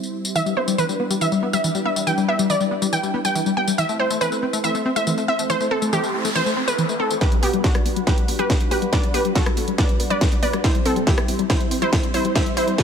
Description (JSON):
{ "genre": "uplifting trance", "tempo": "140 BPM", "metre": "4/4", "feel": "straight", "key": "G major", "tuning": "A4 = 435 Hz", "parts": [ { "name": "analog string pad", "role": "sustained chords", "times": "0.0-12.8 s", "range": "G3 to C5", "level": "-28 LUFS", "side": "equal", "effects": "ensemble chorus, sidechain pumping" }, { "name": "techno drum kit", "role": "drums", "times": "0.0-12.8 s", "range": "hi-hat, rim click, snare drum, tambourine", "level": "-27 LUFS", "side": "equal", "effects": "overdrive" }, { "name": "wide unison pluck", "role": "melody", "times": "0.4-12.8 s", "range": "B3 to G5", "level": "-23 LUFS", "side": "right 1 dB", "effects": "vintage 12-bit sampler grit, sidechain pumping, digital delay" }, { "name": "tight sequenced synth", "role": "arpeggios", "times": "0.4-12.8 s", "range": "E3 to C4", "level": "-25 LUFS", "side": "left 4 dB", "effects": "chorus, sidechain pumping, ping-pong delay" }, { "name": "noise sweep", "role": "sound effects", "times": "5.8-7.2 s", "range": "none", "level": "-30 LUFS", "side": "equal", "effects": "none" }, { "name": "electronic kick drum", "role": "drums", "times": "7.2-12.8 s", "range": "none", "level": "-20 LUFS", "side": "equal", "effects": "distortion, overdrive" } ], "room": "light reverb", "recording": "none", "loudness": "-18 LUFS", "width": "side -7 dB against mid", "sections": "0.0-7.2 A section; 7.2-12.8 B section", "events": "filter sweep on analog synth pad 0.0-7.2; noise sweep 5.8-7.2; build-up 7.2-12.8; drum fill 7.2-12.8", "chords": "0.4 Em7; 3.8 Am; 7.2 Gmaj7; 10.6 C" }